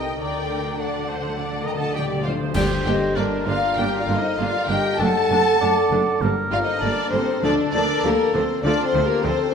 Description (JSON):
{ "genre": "classical, dramatic, fast romantic movement for symphony orchestra", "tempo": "99 BPM", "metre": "4/4", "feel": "straight", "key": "G minor", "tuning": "A4 = 440 Hz", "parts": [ { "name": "warm symphonic violin section", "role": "melody", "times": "0.0-9.5 s", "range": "Bb4 to Bb5", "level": "-25 LUFS", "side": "left 4 dB", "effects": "none" }, { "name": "warm symphonic violin section", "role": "second line", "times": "0.0-9.5 s", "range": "Bb3 to Bb4", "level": "-29 LUFS", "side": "left 1 dB", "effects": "none" }, { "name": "clear symphonic viola section", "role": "accompaniment", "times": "0.0-9.3 s", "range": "F3 to Eb5", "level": "-29 LUFS", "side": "right 3 dB", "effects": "none" }, { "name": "concert harp", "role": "arpeggios", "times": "0.0-9.5 s", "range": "F#2 to A5", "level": "-28 LUFS", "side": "left 5 dB", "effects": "none" }, { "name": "clear symphonic double bass section", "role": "bass", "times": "0.0-9.3 s", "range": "F#1 to D2", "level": "-30 LUFS", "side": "right 3 dB", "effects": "none" }, { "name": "rich studio cello section", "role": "bass", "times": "0.0-9.3 s", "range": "F#2 to D3", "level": "-29 LUFS", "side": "right 4 dB", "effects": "none" }, { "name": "timpani", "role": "percussion", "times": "0.2-2.5, 7.4-8.3 s", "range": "D3", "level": "-31 LUFS", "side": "left 2 dB", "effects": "none" }, { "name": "hollow concert flute", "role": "second line", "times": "1.7-9.3 s", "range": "G4 to G5", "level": "-29 LUFS", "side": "right 1 dB", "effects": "none" }, { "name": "mellow French horn section", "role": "sustained chords", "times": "1.7-9.5 s", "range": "Bb3 to Bb4", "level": "-26 LUFS", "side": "equal", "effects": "none" }, { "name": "clash cymbals and concert bass drum", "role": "percussion", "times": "2.5-3.7 s", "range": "none", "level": "-30 LUFS", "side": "equal", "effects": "none" }, { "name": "warm oboe", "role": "second line", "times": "2.6-9.5 s", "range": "F4 to D5", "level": "-28 LUFS", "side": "right 3 dB", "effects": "none" } ], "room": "wet concert hall reverb, RT60 2.0 s", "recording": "minimal, uncompressed stereo recording", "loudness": "-19 LUFS", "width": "side -6 dB against mid", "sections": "0.0-2.5 A section; 2.5-9.5 B section", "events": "timpani fill 0.2-2.5; band accent 2.5-3.2", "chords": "0.2 D; 2.5 Gm; 5.0 D7/F#; 6.2 Gm; 7.4 Dm", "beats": "| 0.20 0.79 1.38 1.95 | 2.55 3.17 3.77 4.39 | 5.00 5.61 6.22 6.82 | 7.43 8.04 8.64 9.24" }